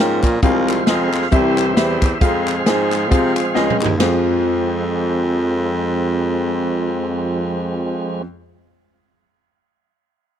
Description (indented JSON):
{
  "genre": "uptempo gospel",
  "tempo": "134 BPM",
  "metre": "4/4",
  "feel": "swing 57% on 8ths",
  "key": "F minor",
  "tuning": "A4 = 440 Hz",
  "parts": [
    { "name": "clear concert grand piano", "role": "accompaniment", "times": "0.0-8.2 s", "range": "F2 to Ab5", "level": "-21 LUFS", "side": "left 2 dB", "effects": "none" },
    { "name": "tonewheel organ", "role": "sustained chords", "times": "0.0-8.2 s", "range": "E3 to F5", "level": "-21 LUFS", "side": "right 2 dB", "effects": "slow rotary speaker, overdrive" },
    { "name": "clear baritone saxophone", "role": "bass", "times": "0.0-8.2 s", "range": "C2 to C3", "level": "-21 LUFS", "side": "equal", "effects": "none" },
    { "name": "swinging big-band drum kit", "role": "drums", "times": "0.2-4.1 s", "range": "hi-hat, kick drum, ride cymbal, snare drum, toms", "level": "-19 LUFS", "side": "equal", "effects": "none" },
    { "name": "group handclap", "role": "percussion", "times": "0.2-4.2 s", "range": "none", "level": "-30 LUFS", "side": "left 7 dB", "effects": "none" }
  ],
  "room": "studio ambience",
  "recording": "dry, close 1970s-style studio recording",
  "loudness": "-16 LUFS",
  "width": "side -9 dB against mid",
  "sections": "0.0-4.0 A section; 4.0-7.6 B section",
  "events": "tonewheel organ solo 0.0-4.0; drum fill 3.6-4.0",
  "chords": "0.4 Fm/C; 1.3 C; 2.2 Fm"
}